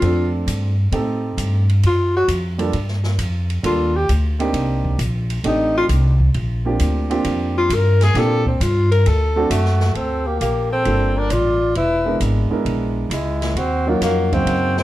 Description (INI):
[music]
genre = jazz, small-group swing and bop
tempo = 133 BPM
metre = 4/4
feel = swing 68% on 8ths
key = unclear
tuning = A4 = 442 Hz
[part]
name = mellow tenor saxophone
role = melody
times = 0.0-14.8 s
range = G#3 to Bb4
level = -20 LUFS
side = left 2 dB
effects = none
[part]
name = warm grand piano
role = accompaniment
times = 0.0-14.8 s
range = Db3 to F5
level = -22 LUFS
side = right 3 dB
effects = none
[part]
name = upright bass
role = bass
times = 0.0-14.8 s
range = E1 to Bb2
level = -19 LUFS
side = equal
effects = none
[part]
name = open jazz drum kit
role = drums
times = 0.0-14.8 s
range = hi-hat, kick drum, ride cymbal, snare drum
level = -30 LUFS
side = right 1 dB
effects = none
[part]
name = breathy trumpet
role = second line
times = 9.5-14.8 s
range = E4 to D5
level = -26 LUFS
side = right 3 dB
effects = none
[sound]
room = light reverb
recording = dark, warm production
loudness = -16 LUFS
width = side -15 dB against mid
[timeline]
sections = 0.0-10.0 A section; 10.0-14.8 B section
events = tenor saxophone solo 0.0-10.0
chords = 0.0 Dm7; 0.9 Am7b5; 1.8 D; 2.7 Gm9; 4.5 Cm7; 5.4 F13/A (rootless); 6.3 Bb6; 9.0 D7; 10.0 Gm9; 11.8 E7#11; 13.6 Ebm9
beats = 0.01 0.47 | 0.92 1.37 1.82 2.28 | 2.73 3.18 3.63 4.09 | 4.54 4.99 5.44 5.89 | 6.34 6.79 7.25 7.70 | 8.15 8.60 9.05 9.50 | 9.95 10.40 10.85 11.30 | 11.76 12.21 12.66 13.11 | 13.56 14.02 14.47